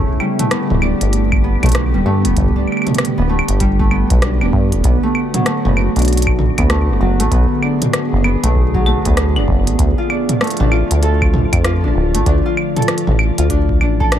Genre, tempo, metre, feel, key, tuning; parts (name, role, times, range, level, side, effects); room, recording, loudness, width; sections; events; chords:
IDM; 97 BPM; 4/4; swing 62% on 16ths; A4 = 437 Hz
glassy FM pad; sustained chords; 0.0-14.2 s; D3 to G#4; -21 LUFS; right 1 dB; ensemble chorus, built-in reverb
Celtic harp; arpeggios; 0.0-14.2 s; F#3 to A4; -20 LUFS; left 1 dB; ping-pong delay
deep acid bass; bass; 0.0-14.2 s; D1 to G2; -15 LUFS; equal
electronic kick drum; drums; 0.1-14.1 s; -18 LUFS; equal; overdrive
industrial drum kit; drums; 0.2-14.2 s; claves, hi-hat, rim click, toms; -20 LUFS; right 1 dB
little or no reverb; -13 LUFS; side -10 dB against mid
0.0-14.2 A section
0.0 Gadd9; 4.8 Bm7; 9.8 Dm